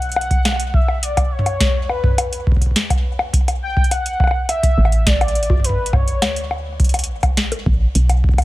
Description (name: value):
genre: IDM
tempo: 104 BPM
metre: 4/4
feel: straight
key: unclear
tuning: A4 = 440 Hz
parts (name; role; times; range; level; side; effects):
- warm velvety synth lead; melody; 0.0-6.5 s; B4 to G5; -24 LUFS; left 1 dB; chorus, digital delay
- woody FM bass; bass; 0.0-8.4 s; A1 to E2; -21 LUFS; equal; none
- booming analog drum machine; drums; 0.0-8.4 s; bongos, hi-hat, snare drum, toms; -21 LUFS; left 1 dB; overdrive
- electronic kick drum; drums; 0.3-8.4 s; none; -17 LUFS; equal; overdrive
- warbly tape-like pad; sustained chords; 8.0-8.4 s; none; barely audible; none; none
room: little or no reverb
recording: none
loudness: -15 LUFS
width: side -17 dB against mid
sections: 0.0-8.4 A section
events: none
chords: 0.0 Bsus24; 3.3 Asus4